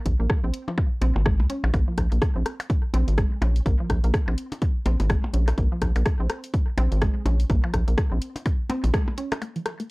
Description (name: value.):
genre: minimal techno.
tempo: 125 BPM.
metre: 4/4.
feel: swing 59% on 16ths.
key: Bb minor.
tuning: A4 = 440 Hz.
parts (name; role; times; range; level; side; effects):
rubbery square bass; bass; 0.1-8.9 s; Ab1 to Db2; -22 LUFS; equal; sidechain pumping.
electronic kick drum; drums; 0.1-9.1 s; none; -24 LUFS; equal; overdrive.
house drum kit; drums; 0.1-9.9 s; hi-hat, rim click; -30 LUFS; equal; overdrive.
resonant blip pluck; riff; 0.2-9.8 s; F3 to Db4; -33 LUFS; right 1 dB; chorus, sidechain pumping, tape echo.
electronic percussion blips and rim click; percussion; 0.7-9.8 s; none; -30 LUFS; left 1 dB; analog delay.
room: little or no reverb.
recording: dry, gritty hardware recording.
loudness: -21 LUFS.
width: side -25 dB against mid.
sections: 0.0-9.4 A section.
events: band accent 8.9.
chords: 0.0 Bb7(no3).